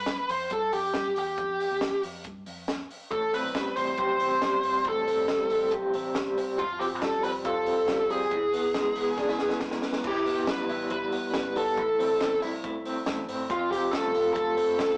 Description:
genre	jangly indie pop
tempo	139 BPM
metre	4/4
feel	straight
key	A minor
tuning	A4 = 440 Hz
part	high-gain lead guitar	melody	0.0-15.0 s	F4 to C5	-29 LUFS	equal	distortion
part	vintage muted picked electric bass	bass	0.0-15.0 s	E1 to G2	-52 LUFS	equal	none
part	compact cocktail drum kit	drums	0.1-14.9 s	crash cymbal, hi-hat, kick drum, snare drum	-37 LUFS	equal	none
part	electric guitar through a small old amp	arpeggios	3.1-15.0 s	A2 to G4	-33 LUFS	equal	tremolo
room	moderate stone room reverb, RT60 0.9 s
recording	rough rehearsal-room recording, small speaker sound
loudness	-28 LUFS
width	mono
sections	0.0-10.0 A section; 10.0-15.0 B section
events	drum fill 9.2-10.0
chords	0.0 Fsus2; 3.1 Am7; 6.6 Fsus2; 8.3 E; 10.0 Em; 11.8 Am; 13.5 F

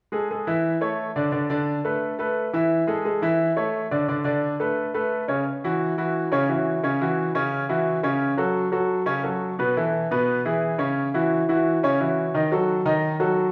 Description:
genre	latin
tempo	174 BPM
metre	4/4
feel	straight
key	A major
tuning	A4 = 440 Hz
part	clear grand piano	solo	0.1-13.5 s	B2 to E5	-24 LUFS	equal	none
room	wet recital hall reverb, RT60 1.5 s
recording	recorded in a church or concert hall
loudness	-24 LUFS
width	mono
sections	0.0-5.5 A section; 5.5-13.5 B section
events	none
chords	0.0 A5; 0.6 Aadd11; 1.3 Bm7; 2.0 Esus4; 2.7 A5; 3.4 Aadd11; 4.1 Bm7; 4.8 Aadd9; 5.5 C#madd11; 8.2 F#m/C#; 9.6 Esus4; 10.3 E; 11.0 F#5; 12.3 D#dim

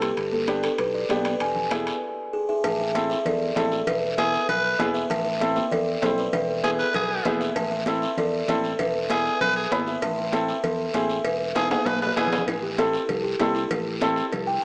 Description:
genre	latin, cumbia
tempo	195 BPM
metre	4/4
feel	straight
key	A harmonic minor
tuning	A4 = 444 Hz
part	buzzing kalimba	melody	0.0-14.6 s	E4 to A5	-28 LUFS	equal	tape echo
part	clear upright piano	accompaniment	0.0-14.2 s	B3 to C5	-30 LUFS	equal	none
part	fingered electric bass	bass	0.0-14.6 s	E1 to E2	-38 LUFS	equal	none
part	congas	percussion	0.0-14.5 s	none	-36 LUFS	equal	none
part	guiro	percussion	0.0-14.6 s	none	-40 LUFS	equal	none
part	timbales and cowbell	percussion	0.0-14.5 s	none	-35 LUFS	equal	none
part	raspy tenor saxophone	second line	4.2-12.5 s	G#4 to B4	-28 LUFS	equal	none
room	moderate plate reverb, RT60 2.3 s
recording	dreamy mix soaked in reverb, small speaker sound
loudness	-24 LUFS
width	mono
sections	0.0-2.6 A section; 2.6-12.5 B section; 12.5-14.6 C section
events	drum fill 11.6-12.5; kalimba solo 12.5-14.6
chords	0.2 G; 1.4 E; 2.6 Am; 3.9 E; 5.1 Am; 6.3 E; 7.6 Am; 8.8 E; 10.0 Am; 11.2 E; 12.5 Am

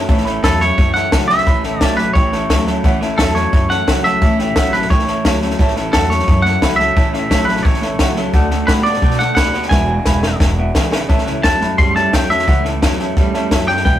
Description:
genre	rockabilly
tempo	174 BPM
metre	4/4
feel	straight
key	A major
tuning	A4 = 440 Hz
part	picked steel-string acoustic guitar	accompaniment	0.0-14.0 s	E2 to F#4	-26 LUFS	left 3 dB	none
part	warm upright piano	accompaniment	0.0-14.0 s	B4 to B5	-24 LUFS	right 3 dB	none
part	electric guitar through a small old amp	riff	0.0-14.0 s	E2 to B3	-22 LUFS	right 1 dB	none
part	upright bass	bass	0.0-14.0 s	E1 to B2	-21 LUFS	equal	none
part	compact cocktail drum kit	drums	0.1-13.9 s	hi-hat, kick drum, snare drum	-16 LUFS	equal	none
part	twangy electric guitar	melody	0.4-14.0 s	A4 to C6	-17 LUFS	equal	none
room	moderate small room reverb, RT60 0.5 s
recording	rough rehearsal-room recording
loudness	-12 LUFS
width	side -12 dB against mid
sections	0.1-11.1 A section; 11.1-14.0 B section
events	drum fill 9.7-11.1; clean electric guitar solo 11.1-14.0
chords	0.1 A; 8.3 D; 9.7 E7; 11.1 A

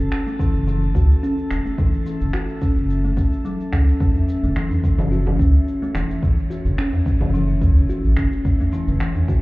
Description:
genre	organic downtempo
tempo	108 BPM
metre	4/4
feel	swing 54% on 16ths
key	F# minor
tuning	A4 = 440 Hz
part	kalimba	arpeggios	0.0-9.4 s	E3 to F#4	-24 LUFS	left 1 dB	tape echo
part	warm sub bass	bass	0.0-9.0 s	E1 to C#2	-19 LUFS	equal	sidechain pumping
part	electronic cabasa, finger snaps and congas	drums	0.0-9.4 s	none	-31 LUFS	equal	none
part	drifting glass-harmonics texture	texture	0.0-9.4 s	A3 to A4	-35 LUFS	left 1 dB	chorus, built-in reverb
part	electronic kick drum	drums	0.4-9.4 s	none	-19 LUFS	equal	none
part	djembe	percussion	4.1-9.3 s	none	-24 LUFS	equal	none
room	digital ambience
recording	heard muffled through a wall, club reverb, EQ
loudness	-17 LUFS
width	side -21 dB against mid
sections	0.0-9.4 A section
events	none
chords	0.0 F#m7

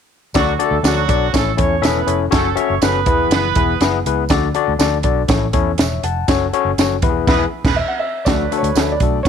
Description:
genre	uptempo 1960s-style soul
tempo	121 BPM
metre	4/4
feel	straight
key	unclear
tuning	A4 = 439 Hz
part	clear horn section	second line	0.3-3.8, 7.3-9.3 s	E3 to C#5	-22 LUFS	right 14 dB	none
part	overdriven tine electric piano	accompaniment	0.3-9.3 s	A2 to A5	-18 LUFS	left 11 dB	auto-pan
part	compact cocktail drum kit	drums	0.3-9.3 s	crash cymbal, hi-hat, kick drum, snare drum	-18 LUFS	right 2 dB	none
part	tambourine	percussion	0.3-9.3 s	none	-30 LUFS	right 17 dB	none
part	vintage muted fingered electric bass	bass	0.4-9.3 s	E1 to E2	-22 LUFS	right 2 dB	none
part	warm baby grand piano	melody	7.8-9.3 s	C#5 to F#5	-21 LUFS	right 2 dB	none
room	light reverb, small room ambience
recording	1960s-style stereo with parts hard left and right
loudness	-14 LUFS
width	side -7 dB against mid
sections	0.3-8.3 A section; 8.3-9.3 B section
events	band accent 7.3-8.3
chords	0.3 D; 1.3 A; 2.3 F#m; 3.1 E; 4.3 D; 5.3 A; 6.3 F#m; 7.0 E; 8.3 D

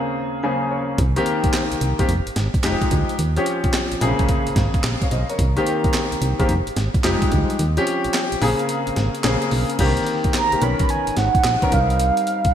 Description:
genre	R&B, new jack swing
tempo	109 BPM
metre	4/4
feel	swing 65% on 16ths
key	Bb dorian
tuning	A4 = 440 Hz
part	warm grand piano	accompaniment	0.0-12.5 s	C3 to Ab5	-21 LUFS	left 2 dB	wide subtle chorus
part	solid FM bass	bass	1.0-12.5 s	F1 to Eb2	-22 LUFS	right 1 dB	none
part	breakbeat sampler-style drum kit	drums	1.0-12.5 s	crash cymbal, handclaps, hi-hat, kick drum, snare drum	-22 LUFS	right 1 dB	gated reverb
part	group handclap	percussion	1.5-11.6 s	none	-36 LUFS	right 7 dB	none
part	mellow horn-like synth lead	melody	10.4-12.5 s	F5 to B5	-20 LUFS	right 4 dB	chorus, ping-pong delay
room	moderate lush hall reverb, RT60 2.4 s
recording	bright 1980s-style digital production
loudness	-17 LUFS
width	side -9 dB against mid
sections	0.0-9.8 A section; 9.8-12.5 B section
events	grand piano fill 0.2-1.0; kick muted 7.6-9.8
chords	0.0 Bbm9; 1.0 Cm7; 2.1 Fm9; 3.2 Eb13; 4.0 Bbm9; 5.4 Cm7; 6.5 Fm9; 7.6 Eb13; 8.4 Bbm9; 9.8 Cm7; 10.6 Bmaj9; 11.7 Cm7

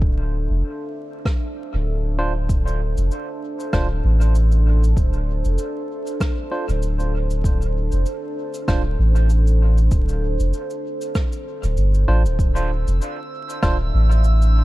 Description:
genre	ambient dub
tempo	97 BPM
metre	4/4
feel	swing 56% on 16ths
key	D minor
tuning	A4 = 440 Hz
part	deep dark ambient pad	sustained chords	0.0-14.6 s	D4 to F5	-29 LUFS	equal	chorus, built-in reverb
part	soft dub sub bass	bass	0.0-14.6 s	D1 to A1	-17 LUFS	equal	none
part	electronic kick drum	drums	0.0-13.8 s	none	-20 LUFS	equal	overdrive
part	rim click and cabasa	drums	1.3-14.5 s	none	-32 LUFS	right 1 dB	dub echo
part	barky tine electric piano	stabs	2.2-13.8 s	D4 to C5	-30 LUFS	right 2 dB	auto-pan, dub echo
part	drifting glass-harmonics texture	texture	12.7-14.6 s	E6	-33 LUFS	right 2 dB	chorus, built-in reverb
room	studio reverb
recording	dark, warm production, vinyl crackle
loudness	-18 LUFS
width	side -17 dB against mid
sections	0.0-12.4 A section; 12.4-14.6 B section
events	fade-in on ambient pad 0.0-12.4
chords	0.0 Dm7

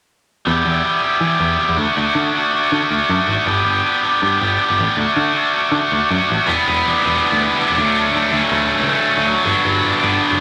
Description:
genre	rock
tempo	161 BPM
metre	4/4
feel	straight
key	D major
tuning	A4 = 440 Hz
part	overdriven electric guitar	riff	0.5-10.4 s	F#3 to G4	-18 LUFS	equal	none
part	picked electric bass	bass	0.5-10.4 s	E1 to E3	-25 LUFS	equal	none
part	high-gain distorted guitar	riff	6.5-10.4 s	G2 to E4	-20 LUFS	equal	distortion
room	wet club reverb, RT60 0.7 s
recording	none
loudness	-17 LUFS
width	mono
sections	0.5-6.5 A section; 6.5-10.4 B section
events	none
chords	0.5 Em; 1.8 D; 3.5 G; 5.0 D; 6.5 Em7; 7.8 Dmaj7; 9.5 Gmaj7

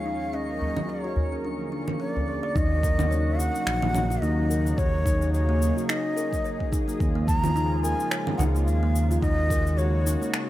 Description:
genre	organic downtempo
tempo	108 BPM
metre	4/4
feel	swing 56% on 16ths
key	Eb minor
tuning	A4 = 436 Hz
part	breathy bansuri	melody	0.0-10.3 s	Db5 to Bb5	-30 LUFS	right 1 dB	tape echo, shimmer reverb
part	warm analog pad	sustained chords	0.0-10.5 s	Eb2 to Db5	-32 LUFS	left 1 dB	chorus, sidechain pumping, shimmer reverb
part	twinkling granular texture	texture	0.0-2.6 s	Db6	-44 LUFS	right 1 dB	built-in reverb, shimmer reverb
part	kalimba	arpeggios	0.1-10.3 s	Bb3 to Eb5	-31 LUFS	left 1 dB	tape echo, shimmer reverb
part	udu	percussion	0.6-2.3 s	none	-28 LUFS	equal	none
part	electronic congas, cabasa and finger snaps	drums	0.8-10.5 s	none	-30 LUFS	right 1 dB	none
part	smooth gliding synth bass	bass	2.6-10.2 s	Bb1 to Eb2	-24 LUFS	equal	sidechain pumping
part	electronic kick drum	drums	2.6-9.6 s	none	-26 LUFS	equal	none
room	light reverb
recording	none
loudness	-22 LUFS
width	side -15 dB against mid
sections	0.0-2.6 A section; 2.6-10.5 B section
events	filter sweep on kalimba 0.0-2.6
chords	0.3 Ab9sus4/Eb; 1.4 Bb7; 2.6 Ebm7; 7.0 Db/Eb; 9.2 Ab9sus4/Eb

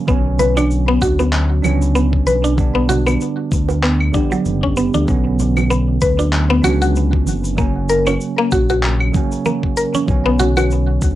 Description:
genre	organic downtempo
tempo	96 BPM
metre	4/4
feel	swing 56% on 16ths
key	B harmonic minor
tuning	A4 = 442 Hz
part	bell-like tine electric piano	accompaniment	0.0-11.2 s	C#3 to G4	-21 LUFS	right 6 dB	slow stereo tremolo, sidechain pumping, cassette tape, analog delay
part	mallet-like synth pluck	arpeggios	0.1-11.2 s	F#3 to B4	-19 LUFS	left 1 dB	chorus, cassette tape, analog delay
part	smooth synth bass	bass	0.1-11.2 s	F#1 to D2	-17 LUFS	left 1 dB	sidechain pumping
part	electronic cabasa, claves and handclaps	drums	0.1-11.2 s	none	-25 LUFS	left 1 dB	cassette tape
part	electronic kick drum	drums	0.1-11.2 s	none	-19 LUFS	left 1 dB	cassette tape
part	congas and bongos	percussion	0.4-10.7 s	none	-24 LUFS	right 9 dB	none
room	light reverb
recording	home recording on cassette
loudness	-14 LUFS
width	side -14 dB against mid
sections	0.0-11.2 A section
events	none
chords	0.1 Bmadd9; 2.6 G/B; 5.1 Bmadd9; 7.6 F#; 10.1 Bmadd9

